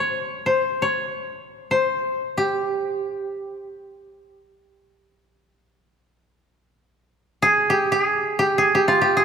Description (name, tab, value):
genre	japanese traditional, Japanese chamber music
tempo	free time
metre	none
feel	none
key	unclear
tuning	A4 = 440 Hz
part	koto	solo	0.0-9.2 s	F4 to Db5	-19 LUFS	equal	none
room	moderate concert hall reverb, RT60 2.6 s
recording	none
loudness	-19 LUFS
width	side -7 dB against mid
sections	0.0-9.2 A section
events	none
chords	none